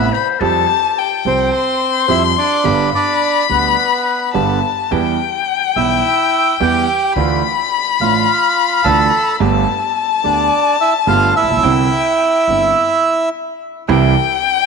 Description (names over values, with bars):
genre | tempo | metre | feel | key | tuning
tango | 107 BPM | 4/4 | rubato | C major | A4 = 439 Hz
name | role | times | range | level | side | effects
bandoneon | melody | 0.0-13.3 s | B3 to A5 | -16 LUFS | right 3 dB | none
warm clarinet | second line | 0.0-1.1 s | G4 to E5 | -23 LUFS | left 9 dB | none
warm violin | second line | 0.0-14.7 s | G5 to C6 | -16 LUFS | left 12 dB | slapback echo
warm concert grand piano | accompaniment | 0.0-14.1 s | G1 to G4 | -19 LUFS | right 9 dB | none
upright bass | bass | 0.0-14.1 s | G1 to F2 | -22 LUFS | equal | none
room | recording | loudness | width
moderate plate reverb, RT60 2.5 s | 1960s-style stereo with parts hard left and right | -12 LUFS | side -5 dB against mid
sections
0.0-13.9 A section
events
stop 12.8-13.9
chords
0.4 Fsus2; 2.7 G; 4.9 Em; 7.2 Dmadd9; 9.4 Gadd9; 11.6 Cadd9; 13.9 C